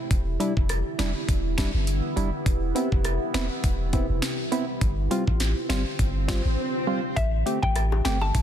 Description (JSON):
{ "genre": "dancehall", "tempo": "102 BPM", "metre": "4/4", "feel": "swing 56% on 16ths", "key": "A minor", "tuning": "A4 = 439 Hz", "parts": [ { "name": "deep dark ambient pad", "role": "sustained chords", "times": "0.0-8.4 s", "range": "C3 to G4", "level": "-32 LUFS", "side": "right 1 dB", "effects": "chorus, built-in reverb, phaser, sidechain pumping" }, { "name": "punchy sub bass", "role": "bass", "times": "0.1-8.4 s", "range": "E1 to A1", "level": "-26 LUFS", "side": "equal", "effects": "none" }, { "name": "island pop drum kit", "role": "drums", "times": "0.1-8.4 s", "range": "finger snaps, hi-hat, kick drum, rim click, snare drum", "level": "-27 LUFS", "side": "equal", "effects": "overdrive" }, { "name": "percussive organ stab", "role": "accompaniment", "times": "0.4-8.2 s", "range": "G3 to G4", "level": "-30 LUFS", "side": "right 2 dB", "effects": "chorus" }, { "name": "swell", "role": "sound effects", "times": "5.6-7.2 s", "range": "none", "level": "-34 LUFS", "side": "left 2 dB", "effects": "none" }, { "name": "mallet-like synth pluck", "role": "melody", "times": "7.2-8.3 s", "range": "E5 to A5", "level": "-28 LUFS", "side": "left 3 dB", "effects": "chorus, digital delay" }, { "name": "bongos", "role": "percussion", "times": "7.9-8.3 s", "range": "none", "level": "-35 LUFS", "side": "left 8 dB", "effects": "none" } ], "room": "light reverb", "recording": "dense, heavily limited modern master", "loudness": "-23 LUFS", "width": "side -10 dB against mid", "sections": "0.0-7.2 A section; 7.2-8.4 B section", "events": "swell 5.6-7.2", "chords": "0.1 Em7; 2.5 Cmaj7/E; 4.8 G7sus4; 7.2 Am7" }